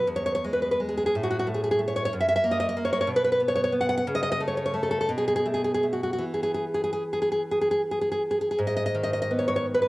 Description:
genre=romantic piece for solo classical guitar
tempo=49-63 BPM (dotted quarters)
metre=6/8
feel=rubato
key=unclear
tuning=A4 = 440 Hz
part: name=nylon-string guitar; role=solo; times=0.0-9.9 s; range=E2 to F#5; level=-23 LUFS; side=equal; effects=none
room=wet spring reverb, RT60 1.9 s, small room ambience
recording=home recording on cassette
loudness=-23 LUFS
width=side -19 dB against mid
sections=0.0-8.6 A section; 8.6-9.9 B section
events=none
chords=0.1 E; 1.1 N.C.; 2.1 F#; 3.1 N.C.; 4.1 A/C#; 5.1 F#madd11/B; 6.2 N.C.; 8.6 G#m

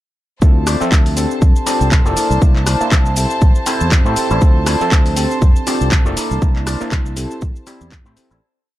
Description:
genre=filtered disco house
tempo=120 BPM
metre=4/4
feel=swing 56% on 16ths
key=D minor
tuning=A4 = 440 Hz
part: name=overdriven reed electric piano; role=accompaniment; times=0.4-8.4 s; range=F3 to A5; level=-22 LUFS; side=equal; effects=phaser, vintage 12-bit sampler grit, sidechain pumping
part: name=warm symphonic violin section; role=sustained chords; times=0.4-8.4 s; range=C5 to A5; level=-24 LUFS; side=right 1 dB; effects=vintage 12-bit sampler grit, sidechain pumping
part: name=fingered electric bass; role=bass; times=0.4-8.4 s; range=F1 to A2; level=-19 LUFS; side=equal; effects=sidechain pumping
part: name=electronic kick drum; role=drums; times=0.4-8.0 s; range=none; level=-12 LUFS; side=equal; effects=none
part: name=house drum kit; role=drums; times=0.4-8.4 s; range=handclaps, hi-hat, rim click, shaker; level=-22 LUFS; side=left 1 dB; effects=sidechain pumping on perc, sidechain pumping on hats
part: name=electric guitar with an envelope filter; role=riff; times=0.7-8.4 s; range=E4 to D5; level=-24 LUFS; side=left 2 dB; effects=sidechain pumping
room=light reverb, digital ambience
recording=dark, warm production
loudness=-12 LUFS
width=side -15 dB against mid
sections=0.4-8.4 drop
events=drop 0.4-8.4; fade-out 5.8-8.4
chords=0.4 Dm9; 1.4 F69; 2.2 C13; 3.4 Am7; 4.4 Dm9; 5.4 F69; 6.2 C13; 7.4 Am7

